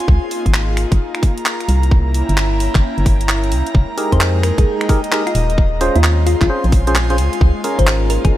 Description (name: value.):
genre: UK garage, two-step garage.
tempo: 131 BPM.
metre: 4/4.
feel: swing 64% on 16ths.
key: unclear.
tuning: A4 = 442 Hz.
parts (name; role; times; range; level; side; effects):
soft string machine; sustained chords; 0.0-8.4 s; Ab3 to G5; -27 LUFS; left 1 dB; phaser, ensemble chorus, vintage 12-bit sampler grit, sidechain pumping.
garage drum kit; drums; 0.0-8.3 s; finger snaps, handclaps, hi-hat; -22 LUFS; equal; none.
airy breathy pad; texture; 0.0-8.4 s; Ab3 to C6; -24 LUFS; equal; chorus, sidechain pumping.
organ-like FM bass; bass; 0.1-8.3 s; Eb1 to F2; -16 LUFS; equal; tube saturation.
electronic kick drum; drums; 0.1-8.3 s; none; -14 LUFS; equal; none.
percussive organ stab; stabs; 4.0-8.4 s; Db4 to C5; -21 LUFS; equal; chorus.
thumb-piano-like synth pluck; melody; 4.1-8.4 s; F4 to C5; -22 LUFS; left 1 dB; chorus, phaser, ping-pong delay.
room: light reverb, digital ambience.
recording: bright 1980s-style digital production, vinyl crackle.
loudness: -13 LUFS.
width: side -14 dB against mid.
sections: 0.0-8.4 A section.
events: none.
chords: 0.0 Db6 (rootless); 1.7 C7b9; 3.7 Fm11; 5.3 Eb13sus4; 7.2 Db6.